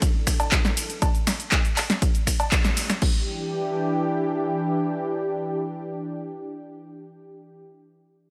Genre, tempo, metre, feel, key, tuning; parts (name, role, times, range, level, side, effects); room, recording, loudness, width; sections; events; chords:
acid house; 120 BPM; 4/4; straight; E minor; A4 = 440 Hz
lush unison pad; sustained chords; 0.0-7.6 s; E3 to A4; -30 LUFS; equal; chorus, sidechain pumping
dusty soul sampler-style drum kit; drums; 0.0-0.9 s; hi-hat, snare drum; -39 LUFS; equal
electronic kick drum; drums; 0.0-3.1 s; -25 LUFS; equal
punchy analog drum machine; drums; 0.0-3.1 s; cowbell, crash cymbal, finger snaps, handclaps, hi-hat, ride cymbal, shaker, snare drum; -27 LUFS; equal
moderate lush hall reverb, RT60 2.1 s; -24 LUFS; mono
0.0-3.0 A section; 3.0-7.0 B section
drop 0.0-3.0; band accent 2.5
0.0 E7(no3); 3.0 Em7